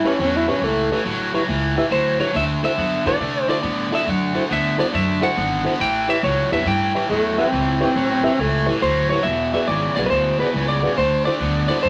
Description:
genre	electric blues shuffle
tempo	139 BPM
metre	4/4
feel	swing 67% on 8ths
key	A mixolydian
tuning	A4 = 440 Hz
part	growling tenor saxophone	second line	0.0-1.1, 7.1-8.7 s	A3 to E4	-23 LUFS	equal	none
part	cranked stack guitar	riff	0.0-11.9 s	E2 to B3	-26 LUFS	equal	overdrive
part	upright bass	bass	0.0-11.9 s	E1 to C3	-27 LUFS	equal	none
part	reed electric piano	accompaniment	0.1-11.8 s	E4 to E5	-27 LUFS	equal	overdrive, fast tremolo
part	lightly driven lead guitar	melody	1.9-11.9 s	B4 to G5	-23 LUFS	equal	none
room	wet studio reverb, RT60 0.8 s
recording	none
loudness	-20 LUFS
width	mono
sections	0.0-11.9 A section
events	none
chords	0.0 A9; 2.3 D9; 5.8 A9; 9.2 E9; 11.0 D9

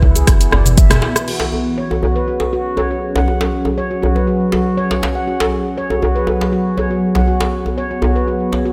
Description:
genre	afro house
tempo	120 BPM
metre	4/4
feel	straight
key	unclear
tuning	A4 = 439 Hz
part	ethereal airy pad	sustained chords	0.0-8.7 s	E3 to G#4	-23 LUFS	equal	ensemble chorus, built-in reverb, phaser, sidechain pumping
part	handpan	arpeggios	0.0-8.7 s	B3 to F#5	-23 LUFS	equal	vintage 12-bit sampler grit, sidechain pumping, low-pass filter, digital delay
part	woody FM bass	bass	0.0-1.0 s	F#1 to C#2	-18 LUFS	equal	tube saturation, sidechain pumping
part	electronic kick drum	drums	0.0-0.9 s	none	-14 LUFS	equal	none
part	djembe	percussion	0.0-8.6 s	none	-22 LUFS	equal	none
part	afro-pop drum kit	drums	0.2-1.4 s	crash cymbal, hi-hat, rim click, shaker, toms	-20 LUFS	equal	none
room	moderate lush hall reverb, RT60 1.8 s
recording	none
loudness	-16 LUFS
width	mono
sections	0.0-1.3 A section; 1.3-8.7 B section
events	band accent 0.9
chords	0.0 Eadd9/F#; 1.3 F#5

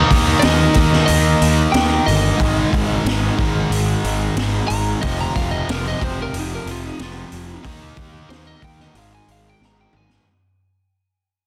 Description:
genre	hard rock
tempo	91 BPM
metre	4/4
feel	straight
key	unclear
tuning	A4 = 440 Hz
part	distorted electric guitar	riff	0.0-10.3 s	F2 to Eb4	-25 LUFS	equal	overdrive
part	overdriven electric guitar	riff	0.0-10.3 s	F2 to Eb4	-28 LUFS	equal	none
part	fuzz picked electric bass	bass	0.0-10.2 s	F1 to Eb2	-23 LUFS	equal	overdrive
part	raw garage drum kit	drums	0.1-10.3 s	hi-hat, kick drum, snare drum, toms	-24 LUFS	equal	none
part	lightly driven lead guitar	melody	0.4-10.3 s	Eb4 to Bb5	-26 LUFS	equal	none
room	light reverb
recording	dense, heavily limited modern master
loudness	-18 LUFS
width	mono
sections	0.0-10.3 A section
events	fade-out 0.0-10.3; lead electric guitar solo 0.0-10.3; drum fill 9.6-10.3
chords	0.0 Eb5; 2.4 Ab5; 5.0 F5; 7.6 Eb5; 9.0 Ab5

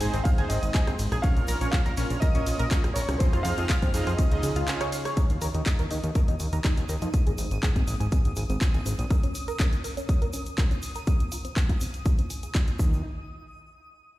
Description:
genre	progressive house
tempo	122 BPM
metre	4/4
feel	straight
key	unclear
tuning	A4 = 443 Hz
part	dark concert grand piano	melody	0.0-4.9 s	C5 to F5	-36 LUFS	right 2 dB	dub echo
part	airy dreamy lead	second line	0.0-4.9 s	C6 to F6	-39 LUFS	equal	chorus, sidechain pumping, dub echo
part	lush unison pad	sustained chords	0.0-5.2 s	Db3 to Ab4	-38 LUFS	equal	chorus, sidechain pumping
part	tight sequenced synth	arpeggios	0.0-13.0 s	C4 to F5	-35 LUFS	equal	chorus, phaser, sidechain pumping, dub echo
part	soft supersaw	stabs	0.0-4.8 s	C4 to F5	-36 LUFS	right 3 dB	sidechain pumping, dub echo
part	fat analog bass	bass	0.0-9.1, 12.8-13.0 s	Ab1 to F2	-28 LUFS	equal	sidechain pumping
part	house drum kit	drums	0.0-12.8 s	handclaps, hi-hat, ride cymbal, rim click	-35 LUFS	equal	sidechain pumping on hats, sidechain pumping on cymbals
part	egg shaker	percussion	0.0-13.0 s	none	-44 LUFS	right 3 dB	none
part	electronic kick drum	drums	0.3-12.9 s	none	-23 LUFS	equal	none
part	twinkling granular texture	texture	5.6-13.0 s	Eb6	-43 LUFS	left 1 dB	built-in reverb, sidechain pumping
room	digital ambience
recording	played on a big sound system in a bare room, large studio reverb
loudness	-23 LUFS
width	side -16 dB against mid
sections	0.0-5.2 A section; 5.2-13.0 B section; 13.0-14.2 C section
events	drop 0.0-5.2; break 4.7-5.2; filter sweep on synth arpeggio sound 5.2-13.0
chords	0.0 Ab; 1.2 Bbm; 3.2 Fm7; 4.2 Dbadd9; 5.2 Eb5; 7.1 Ab; 9.1 Bbm; 11.1 Fm7; 12.8 N.C.

